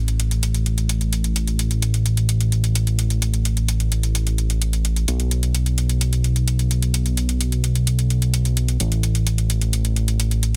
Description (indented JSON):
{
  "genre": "EDM, festival progressive house",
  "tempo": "129 BPM",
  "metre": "4/4",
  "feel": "straight",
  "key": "unclear",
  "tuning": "A4 = 440 Hz",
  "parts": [
    { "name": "fat analog bass", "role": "bass", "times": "0.0-10.6 s", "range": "A1 to B1", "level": "-21 LUFS", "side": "equal", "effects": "none" },
    { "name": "electronic hi-hat", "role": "drums", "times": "0.1-10.5 s", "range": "none", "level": "-28 LUFS", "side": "equal", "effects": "none" }
  ],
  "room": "little or no reverb",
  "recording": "dense, heavily limited modern master",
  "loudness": "-20 LUFS",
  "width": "mono",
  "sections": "0.0-10.6 A section",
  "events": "none",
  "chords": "none"
}